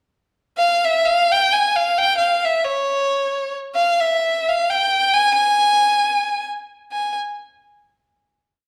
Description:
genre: balkan folk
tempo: free time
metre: none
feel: none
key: F harmonic minor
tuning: A4 = 440 Hz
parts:
  - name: rich violin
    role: solo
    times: 0.6-7.2 s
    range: Db5 to Ab5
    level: -18 LUFS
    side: equal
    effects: none
room: wet large studio reverb, RT60 1.2 s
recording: band playing live in one room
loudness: -18 LUFS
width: mono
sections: 0.6-6.9 A section; 6.9-8.5 final note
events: none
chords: none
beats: free time

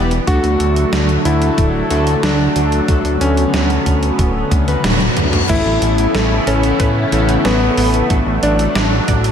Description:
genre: synthwave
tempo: 92 BPM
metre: 4/4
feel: straight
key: unclear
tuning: A4 = 440 Hz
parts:
  - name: warm electric grand piano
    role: melody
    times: 0.0-9.3 s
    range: B3 to F#4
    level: -20 LUFS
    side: left 2 dB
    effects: tape echo, slapback echo
  - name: lush unison pad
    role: sustained chords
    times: 0.0-9.3 s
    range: C#3 to E4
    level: -22 LUFS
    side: equal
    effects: chorus, phaser, sidechain pumping
  - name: chorused polysynth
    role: stabs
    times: 0.0-9.3 s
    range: A3 to D5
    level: -20 LUFS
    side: left 2 dB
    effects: digital delay, slapback echo
  - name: fat analog bass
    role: bass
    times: 0.0-9.3 s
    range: D1 to A2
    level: -17 LUFS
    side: equal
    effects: none
  - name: gated 80s digital drum machine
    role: drums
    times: 0.1-9.3 s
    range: crash cymbal, hi-hat, snare drum, toms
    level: -21 LUFS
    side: right 1 dB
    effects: gated reverb, gated reverb snare
  - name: electronic kick drum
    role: drums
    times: 0.3-9.2 s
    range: none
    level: -18 LUFS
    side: equal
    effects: none
  - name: reverse cymbal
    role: sound effects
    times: 5.2-5.5 s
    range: none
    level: -29 LUFS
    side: left 5 dB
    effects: none
  - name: soft synth bell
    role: second line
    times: 5.5-9.3 s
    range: B4 to E5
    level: -24 LUFS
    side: equal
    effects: chorus, digital delay, slapback echo
  - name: analog pluck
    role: arpeggios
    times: 5.5-9.3 s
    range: A3 to D5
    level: -26 LUFS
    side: right 3 dB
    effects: none
room: moderate lush hall reverb, RT60 3.1 s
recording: big arena sound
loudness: -12 LUFS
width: side -8 dB against mid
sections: 0.0-5.5 A section; 5.5-9.3 B section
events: drum fill 4.5-5.5; band accent 4.8-5.2; reverse cymbal 5.2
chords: 0.3 D; 5.5 Aadd9; 8.1 D/A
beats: | 0.28 0.93 1.58 2.23 | 2.88 3.54 4.19 4.84 | 5.49 6.15 6.80 7.45 | 8.10 8.76

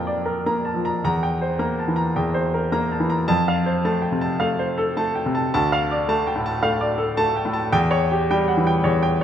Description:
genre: classical, virtuoso piano study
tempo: 107 BPM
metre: 4/4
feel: rubato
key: F major, D minor from 5.5 s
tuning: A4 = 441 Hz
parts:
  - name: clear baby grand piano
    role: solo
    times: 0.0-9.2 s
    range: D2 to Bb5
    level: -19 LUFS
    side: equal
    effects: none
room: moderate recital hall reverb, RT60 1.4 s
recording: none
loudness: -19 LUFS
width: side -9 dB against mid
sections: 0.0-9.2 A section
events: none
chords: 0.0 Gm7/F; 1.0 C7/E; 3.3 F; 5.5 Dm; 7.7 C#dim/E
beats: 0.45 | 1.02 1.58 2.15 2.71 | 3.27 3.83 4.40 4.96 | 5.52 6.08 6.63 7.18 | 7.73 8.29 8.85

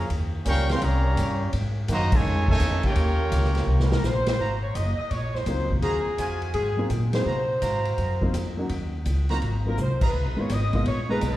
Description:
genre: jazz, big band swing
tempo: 167 BPM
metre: 4/4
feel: swing 66% on 8ths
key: Ab mixolydian from 4.4 s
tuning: A4 = 439 Hz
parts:
  - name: bright trumpet section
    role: melody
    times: 0.0-4.0 s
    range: Eb4 to Db6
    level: -29 LUFS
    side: equal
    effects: none
  - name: warm trombone section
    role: second line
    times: 0.0-4.0 s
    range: Db3 to G4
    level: -30 LUFS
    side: right 2 dB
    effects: none
  - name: upright bass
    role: bass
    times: 0.0-11.4 s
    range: Gb1 to C3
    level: -25 LUFS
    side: equal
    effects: none
  - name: swinging big-band drum kit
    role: drums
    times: 0.1-11.3 s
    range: crash cymbal, hi-hat, kick drum, ride cymbal, snare drum, toms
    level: -29 LUFS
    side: equal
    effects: none
  - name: mellow saxophone section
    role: melody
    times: 3.9-11.4 s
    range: Ab4 to Eb5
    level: -28 LUFS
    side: left 1 dB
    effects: none
  - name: clear trumpet section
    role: stabs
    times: 4.4-11.4 s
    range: F4 to Bb5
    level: -34 LUFS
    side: right 2 dB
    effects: none
  - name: warm grand piano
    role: accompaniment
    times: 5.5-11.2 s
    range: Gb3 to Ab4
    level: -30 LUFS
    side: equal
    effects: none
room: moderate scoring stage reverb, RT60 1.6 s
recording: heard from further back in the room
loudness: -22 LUFS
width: side -15 dB against mid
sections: 0.0-4.4 A section; 4.4-11.4 B section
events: band accent 2.1, 4.2, 7.1, 10.0; drum fill 3.7-4.0, 9.8-10.1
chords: 0.1 Eb13; 1.5 Ab9; 2.2 F7alt; 3.0 Eb13; 4.4 Ab13; 8.7 Ebm7; 9.4 Ab13; 10.1 Db13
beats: | 0.10 0.46 0.82 1.18 | 1.53 1.89 2.25 2.60 | 2.96 3.32 3.68 4.03 | 4.39 4.75 5.11 5.47 | 5.83 6.18 6.54 6.90 | 7.26 7.62 7.98 8.34 | 8.70 9.06 9.42 9.78 | 10.14 10.50 10.86 11.22

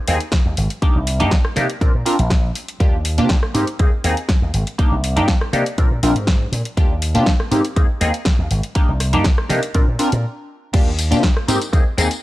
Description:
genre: filtered disco house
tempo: 121 BPM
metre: 4/4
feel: straight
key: unclear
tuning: A4 = 439 Hz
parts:
  - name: funky polysynth comp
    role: accompaniment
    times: 0.1-12.1 s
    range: Bb3 to Bb4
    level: -20 LUFS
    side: equal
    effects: chorus, phaser, sidechain pumping, low-pass filter
  - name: slap bass with an envelope filter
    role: bass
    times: 0.1-12.1 s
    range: Ab1 to C3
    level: -20 LUFS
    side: equal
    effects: sidechain pumping, low-pass filter
  - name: house drum kit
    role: drums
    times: 0.1-12.2 s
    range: crash cymbal, hi-hat, rim click, snare drum, tambourine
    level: -24 LUFS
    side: equal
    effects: sidechain pumping on hats, studio reverb, sidechain pumping on cymbals, sidechain pumping on perc
  - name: electronic kick drum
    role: drums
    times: 0.3-11.8 s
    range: none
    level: -16 LUFS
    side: equal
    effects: studio reverb
room: little or no reverb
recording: dry, gritty hardware recording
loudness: -15 LUFS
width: side -16 dB against mid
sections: 0.0-10.7 A section; 10.7-12.2 B section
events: break 10.2-10.7; drop 10.7-12.2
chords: 0.0 Ab; 0.8 Cm7; 1.8 Bb; 2.8 Ebmaj7; 3.5 Ab; 4.8 Cm7; 5.8 Bb7; 6.8 Ebmaj7; 7.5 Ab; 8.8 Cm7; 9.7 Bb; 10.7 Ebmaj7; 11.5 Abmaj7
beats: 0.33 | 0.82 1.32 1.81 2.31 | 2.81 3.30 3.80 4.29 | 4.79 5.29 5.78 6.28 | 6.77 7.27 7.76 8.26 | 8.76 9.25 9.75 10.24 | 10.74 11.24 11.73

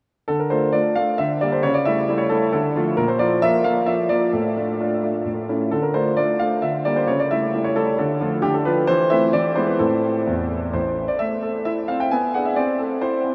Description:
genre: classical-period piano sonatina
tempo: 132 BPM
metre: 3/4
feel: straight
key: D minor, A minor from 8.4 s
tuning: A4 = 444 Hz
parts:
  - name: clear concert grand piano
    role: solo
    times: 0.3-13.3 s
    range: A1 to G#5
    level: -21 LUFS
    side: equal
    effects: none
room: wet huge ambient reverb, RT60 9.5 s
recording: in a vast, echoing space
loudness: -21 LUFS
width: mono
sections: 0.3-11.2 A section; 11.2-13.3 B section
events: none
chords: 0.3 Dm; 1.2 Gm/D; 1.6 A7/C#; 2.5 Dm; 3.0 Bb5; 4.3 Dm/A; 5.3 A; 5.7 Dm; 6.6 Gm/D; 7.1 A7/C#; 8.0 Dm; 8.4 Bdim/D; 8.9 Am/E; 9.3 E7; 9.8 Am; 12.1 G#dim/B; 12.6 Am/C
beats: | 0.28 0.74 1.19 | 1.64 2.09 2.54 | 2.98 3.43 3.88 | 4.33 4.80 5.26 | 5.72 6.17 6.63 | 7.09 7.54 7.98 | 8.43 8.88 9.33 | 9.80 10.27 10.74 | 11.20 11.65 12.11 | 12.56 13.02

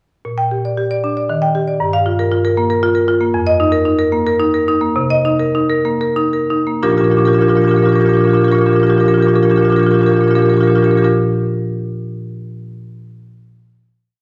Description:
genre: classical, contemporary piece for solo marimba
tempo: 89-118 BPM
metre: 3/4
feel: straight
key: Bb major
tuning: A4 = 440 Hz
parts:
  - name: marimba with medium hard mallets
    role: solo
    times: 0.2-11.1 s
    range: F2 to G5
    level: -15 LUFS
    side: equal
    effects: none
room: wet large studio reverb, RT60 1.4 s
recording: none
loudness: -14 LUFS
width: mono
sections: 0.3-6.8 A section; 6.8-10.8 final chord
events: slowing down 2.6-6.8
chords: 0.3 Bb6; 1.3 Ebmaj7; 1.8 Gm7; 3.3 F7sus4; 5.0 Cm7; 6.8 Bb6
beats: | 0.25 0.78 1.29 | 1.81 2.32 2.83 | 3.35 3.87 4.41 | 4.96 5.54 6.17 | 6.83 7.50 8.17 | 8.84 9.51 10.18

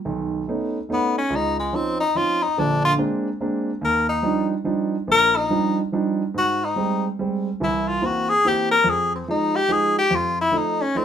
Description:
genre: jazz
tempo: 143 BPM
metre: 3/4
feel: swing 65% on 8ths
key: Eb major, Ab major from 6.3 s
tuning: A4 = 438 Hz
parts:
  - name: warm grand piano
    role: accompaniment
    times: 0.1-11.0 s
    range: Bb1 to D#4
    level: -23 LUFS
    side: right 3 dB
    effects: none
  - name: bright tenor saxophone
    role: melody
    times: 0.9-11.0 s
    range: Ab3 to Bb4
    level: -20 LUFS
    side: left 2 dB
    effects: none
room: moderate studio ambience, RT60 0.5 s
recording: minimal, uncompressed stereo recording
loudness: -19 LUFS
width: side -9 dB against mid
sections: 0.0-6.3 A section; 6.3-11.0 A section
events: tenor saxophone solo 0.0-11.0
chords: 0.0 B9; 1.3 Dbmaj9; 2.6 Bb9; 3.8 Ebmaj9; 6.3 Abmaj7; 7.6 C7; 8.9 Fm7; 10.1 F7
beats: | 0.05 0.47 0.89 | 1.31 1.73 2.15 | 2.56 2.98 3.40 | 3.83 4.24 4.66 | 5.08 5.50 5.92 | 6.34 6.76 7.18 | 7.60 8.02 8.44 | 8.86 9.28 9.70 | 10.12 10.53 10.95

